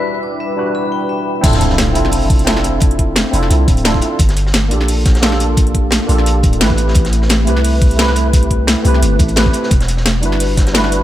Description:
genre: liquid drum and bass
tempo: 174 BPM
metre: 4/4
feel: swing 54% on 16ths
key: D dorian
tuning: A4 = 440 Hz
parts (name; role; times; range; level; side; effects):
- tine electric piano; accompaniment; 0.0-11.0 s; G3 to B4; -17 LUFS; equal; overdrive, ensemble chorus, tape echo
- lush unison pad; sustained chords; 0.0-0.7 s; G3 to E5; -30 LUFS; equal; chorus
- vibraphone with hard mallets; arpeggios; 0.0-1.5 s; B4 to D6; -23 LUFS; left 4 dB; vintage 12-bit sampler grit, tape echo
- long sustained 808-style bass; bass; 1.4-11.0 s; D1 to C2; -15 LUFS; equal; none
- crunchy breakbeat drum kit; drums; 1.4-11.0 s; hi-hat, snare drum; -24 LUFS; equal; high-pass filter on hats, high-pass filter on snare, high-pass filter on room
- drum and bass drum kit; drums; 1.4-11.0 s; crash cymbal, hi-hat, snare drum; -18 LUFS; equal; low-pass filter on hats, low-pass filter on cymbals, low-pass filter on snare, low-pass filter on room
- electronic kick drum; drums; 1.4-10.6 s; none; -13 LUFS; equal; none
- impact; sound effects; 1.4-2.8 s; none; -20 LUFS; equal; none
room: light reverb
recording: none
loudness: -11 LUFS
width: side -13 dB against mid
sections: 0.0-1.4 A section; 1.4-11.0 B section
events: filter sweep on analog synth pad 0.0-1.4; filter sweep 0.0-1.4; drop 1.4-11.0; impact 1.4-2.8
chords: 0.0 Em7; 1.4 Dm7; 4.2 Gm7; 6.8 Am7; 9.7 Em7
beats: | 0.06 0.40 0.75 1.09 | 1.44 1.78 2.13 2.47 | 2.82 3.16 3.50 3.85 | 4.20 4.54 4.88 5.23 | 5.57 5.92 6.26 6.61 | 6.95 7.30 7.64 7.99 | 8.33 8.68 9.02 9.37 | 9.71 10.06 10.40 10.75

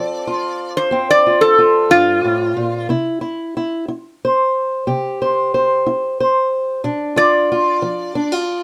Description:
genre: acoustic country blues, solo or duo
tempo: 61 BPM (dotted quarters)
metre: 12/8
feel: straight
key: F major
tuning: A4 = 442 Hz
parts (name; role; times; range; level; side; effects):
- metal-body resonator slide guitar; melody; 0.0-8.6 s; F4 to D5; -16 LUFS; equal; none
- fingerpicked old ladder-braced acoustic guitar; accompaniment; 0.0-8.6 s; F2 to C5; -20 LUFS; equal; none
room: light reverb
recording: close, detailed microphones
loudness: -17 LUFS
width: mono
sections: 0.0-8.6 A section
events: none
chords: 0.0 F; 2.9 C; 6.8 Bb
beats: 0.92 1.91 | 2.89 3.88 4.87 5.85 | 6.84 7.82

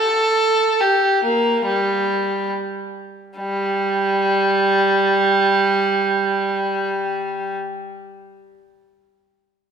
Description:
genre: classical, baroque-style suite movement for unaccompanied violin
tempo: 70 BPM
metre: 4/4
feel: rubato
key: G minor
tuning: A4 = 440 Hz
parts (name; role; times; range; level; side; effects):
- rich violin; solo; 0.0-7.6 s; G3 to A4; -17 LUFS; right 1 dB; none
room: wet concert hall reverb, RT60 2.1 s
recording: recorded in a church or concert hall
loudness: -16 LUFS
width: side -7 dB against mid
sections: 0.0-3.4 A section; 3.4-6.8 B section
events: slowing down 0.0-3.4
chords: none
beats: 0.81 1.66 2.52 | 3.40 4.24 5.10 5.94

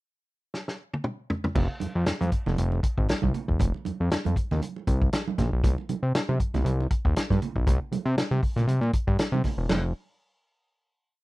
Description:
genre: funk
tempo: 118 BPM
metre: 4/4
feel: swing 56% on 16ths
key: unclear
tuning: A4 = 438 Hz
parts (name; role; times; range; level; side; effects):
- warm soul drum kit; drums; 0.5-9.8 s; crash cymbal, hi-hat, kick drum, snare drum, toms; -26 LUFS; equal; none
- fat analog bass; bass; 1.6-9.9 s; E1 to C3; -25 LUFS; equal; none
- congas; percussion; 1.6-9.9 s; none; -32 LUFS; right 6 dB; none
room: little or no reverb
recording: dry, close 1970s-style studio recording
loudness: -24 LUFS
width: side -20 dB against mid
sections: 0.0-1.6 pickup bar; 1.6-9.7 breakdown; 9.7-11.2 final chord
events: drum fill 0.5-1.6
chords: none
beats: 0.02 0.53 1.04 | 1.55 2.06 2.58 3.09 | 3.60 4.11 4.62 5.13 | 5.64 6.15 6.65 7.16 | 7.67 8.18 8.68 9.19 | 9.70

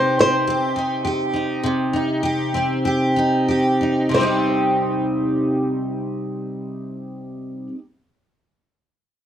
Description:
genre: pop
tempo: 90-106 BPM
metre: 4/4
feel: swing 55% on 16ths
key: C minor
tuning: A4 = 441 Hz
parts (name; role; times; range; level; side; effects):
- flamenco guitar; melody; 0.0-7.7 s; C5; -20 LUFS; left 1 dB; none
- picked steel-string acoustic guitar; accompaniment; 0.0-7.8 s; C3 to G4; -19 LUFS; equal; double-tracked left and right
room: light reverb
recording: worn, warbling old tape, cassette tape, warbly pitch drift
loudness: -18 LUFS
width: side -10 dB against mid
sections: 0.0-4.1 A section; 4.1-6.8 B section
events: slowing down 0.0-4.1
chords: 0.0 Cm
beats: 0.47 1.05 | 1.63 2.23 2.84 3.47 | 4.13 4.79 5.45 6.11

